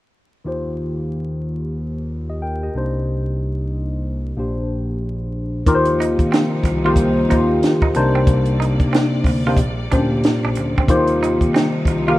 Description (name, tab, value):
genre	R&B, neo-soul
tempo	92 BPM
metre	4/4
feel	swing 62% on 16ths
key	unclear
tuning	A4 = 440 Hz
part	tine electric piano	accompaniment	0.4-12.2 s	Bb2 to G5	-18 LUFS	left 1 dB	overdrive, phaser
part	smooth synth bass	bass	0.5-12.2 s	Bb1 to Eb2	-25 LUFS	equal	none
part	clear studio string section	sustained chords	5.7-12.2 s	C3 to D5	-29 LUFS	right 1 dB	none
part	compact cocktail drum kit	drums	5.7-12.1 s	hi-hat, kick drum, snare drum	-18 LUFS	equal	none
part	semi-hollow electric guitar	second line	6.0-12.2 s	C4 to F4	-28 LUFS	right 6 dB	warbly pitch drift
room	small room ambience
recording	rough home demo mix, vinyl crackle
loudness	-16 LUFS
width	side -16 dB against mid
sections	0.5-5.7 A section; 5.7-12.2 B section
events	none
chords	0.5 Eb69; 2.7 Cm9; 4.4 Bb69; 5.7 Eb69; 8.0 Cm9; 9.6 Bb69; 10.9 Cm7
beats	| 0.45 1.10 1.75 2.41 | 3.06 3.71 4.36 5.02 | 5.67 6.32 6.97 7.62 | 8.28 8.93 9.58 10.23 | 10.88 11.54